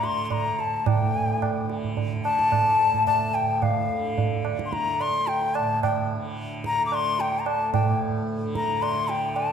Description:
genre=indian classical, Hindustani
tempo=109 BPM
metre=4/4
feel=straight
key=D raga bhairavi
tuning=A4 = 440 Hz
part: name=bright reedy bansuri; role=melody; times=0.0-9.5 s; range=F5 to D6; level=-24 LUFS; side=left 3 dB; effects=none
part: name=tanpura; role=drone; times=0.0-9.5 s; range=D2 to D3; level=-31 LUFS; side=right 2 dB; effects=none
part: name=tabla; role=percussion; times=0.0-9.5 s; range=none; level=-28 LUFS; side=right 6 dB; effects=none
room=wet concert hall reverb, RT60 1.7 s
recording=recorded in a church or concert hall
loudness=-22 LUFS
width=side -7 dB against mid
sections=0.0-9.5 A section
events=none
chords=none

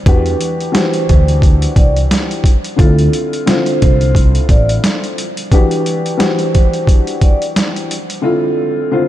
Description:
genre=hip hop, boom-bap hip-hop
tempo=88 BPM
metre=4/4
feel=swing 58% on 16ths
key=unclear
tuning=A4 = 441 Hz
part: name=vibraphone with soft mallets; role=melody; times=0.1-9.1 s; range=A4 to D5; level=-20 LUFS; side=moving between left 2 dB and right 6 dB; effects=auto-pan, high-pass filter, low-pass filter, tape echo
part: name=dark upright piano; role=accompaniment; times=0.1-9.1 s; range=D3 to G4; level=-18 LUFS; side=left 2 dB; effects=high-pass filter, low-pass filter
part: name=upright bass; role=bass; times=0.1-4.8 s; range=A1 to E2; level=-13 LUFS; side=equal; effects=none
part: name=boom bap sampler-style drum kit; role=drums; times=0.1-8.2 s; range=hi-hat, kick drum, snare drum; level=-13 LUFS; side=equal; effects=overdrive, vintage 12-bit sampler grit
room=light reverb, small room ambience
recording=none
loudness=-11 LUFS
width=side -13 dB against mid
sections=0.0-9.1 A section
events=none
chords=0.1 Em9; 2.8 Dm9; 5.5 Em9; 8.2 Dm9

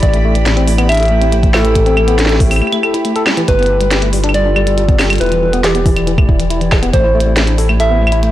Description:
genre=IDM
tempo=139 BPM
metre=4/4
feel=straight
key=A minor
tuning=A4 = 442 Hz
part: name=soft struck synth lead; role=melody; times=0.0-8.3 s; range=G4 to E5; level=-16 LUFS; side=equal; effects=chorus, tape echo
part: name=warbly tape-like pad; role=sustained chords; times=0.0-8.3 s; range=E3 to G5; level=-20 LUFS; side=right 1 dB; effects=chorus, built-in reverb
part: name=tine electric piano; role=arpeggios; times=0.0-8.3 s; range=A2 to A4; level=-19 LUFS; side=left 3 dB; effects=vintage 12-bit sampler grit, dub echo
part: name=round analog bass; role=bass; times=0.0-8.3 s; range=E1 to A1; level=-15 LUFS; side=equal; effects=none
part: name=electronic kick drum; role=drums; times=0.0-7.0 s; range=none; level=-13 LUFS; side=equal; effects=small room ambience
part: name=glitchy drum kit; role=drums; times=0.0-8.3 s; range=claves, hi-hat, snare drum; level=-18 LUFS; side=equal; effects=small room ambience
part: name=bubbling stepped-filter texture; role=texture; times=0.0-3.5 s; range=B5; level=-30 LUFS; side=right 9 dB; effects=chorus, built-in reverb, sidechain pumping
room=light reverb, digital ambience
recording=blown-out, overdriven recording, overdrive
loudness=-10 LUFS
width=side -14 dB against mid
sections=0.0-3.5 A section; 3.5-8.3 A section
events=break 2.6-3.5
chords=0.0 Am7; 3.5 G7; 5.2 Em7; 6.9 Am7

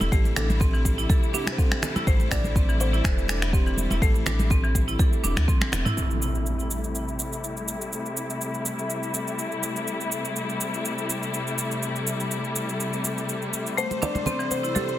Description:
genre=afro house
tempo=123 BPM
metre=4/4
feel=swing 54% on 16ths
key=A minor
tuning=A4 = 439 Hz
part: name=buzzing kalimba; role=melody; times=0.0-5.4, 13.8-14.9 s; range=G4 to D5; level=-33 LUFS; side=left 1 dB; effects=tape echo
part: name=rich studio string section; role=sustained chords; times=0.0-15.0 s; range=C3 to C5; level=-30 LUFS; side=left 2 dB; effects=sidechain pumping, low-pass filter
part: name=marimba with hard mallets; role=arpeggios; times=0.0-6.0, 13.8-14.8 s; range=E3 to A4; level=-30 LUFS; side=equal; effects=sidechain pumping, tape echo
part: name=warm sub bass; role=bass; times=0.0-5.8 s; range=E1 to D2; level=-26 LUFS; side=equal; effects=tube saturation, sidechain pumping
part: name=afro-pop drum kit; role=drums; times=0.0-15.0 s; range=cabasa, finger snaps, toms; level=-30 LUFS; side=right 1 dB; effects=studio reverb, soft clipping on snare
part: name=congas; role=percussion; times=0.0-6.0, 13.9-14.9 s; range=none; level=-31 LUFS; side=right 1 dB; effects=none
part: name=electronic kick drum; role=drums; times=0.1-5.6 s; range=none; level=-22 LUFS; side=equal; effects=studio reverb
part: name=impact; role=sound effects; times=6.0-7.9 s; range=none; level=-29 LUFS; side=equal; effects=none
room=light reverb, small room reverb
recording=dense, heavily limited modern master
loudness=-22 LUFS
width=side -14 dB against mid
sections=0.0-6.0 A section; 6.0-15.0 B section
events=drum fill 5.5-6.0; impact 6.0-7.9; filter sweep on string section 6.0-15.0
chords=0.0 Am7

